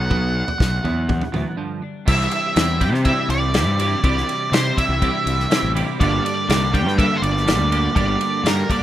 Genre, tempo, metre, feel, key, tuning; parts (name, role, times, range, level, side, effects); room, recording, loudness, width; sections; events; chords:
indie rock; 122 BPM; 4/4; straight; C mixolydian; A4 = 439 Hz
octave-fuzz lead guitar; melody; 0.0-8.8 s; Bb4 to G5; -23 LUFS; right 1 dB; distortion
crunchy overdriven guitar; riff; 0.0-8.8 s; G2 to G4; -25 LUFS; right 6 dB; analog chorus
twelve-string electric guitar; riff; 0.0-8.8 s; G2 to A4; -29 LUFS; left 9 dB; wide subtle chorus
fuzz fingered electric bass; bass; 0.0-8.6 s; G1 to C3; -22 LUFS; equal; overdrive
loose indie drum kit; drums; 0.1-8.8 s; crash cymbal, kick drum, ride cymbal, snare drum, toms; -23 LUFS; equal
small room ambience; rough home demo mix; -17 LUFS; side -12 dB against mid
0.0-2.1 A section; 2.1-8.8 B section
break 1.6-2.1
0.0 Bm7; 0.8 Esus2; 1.6 G5; 2.1 Cadd9; 6.0 Gmadd9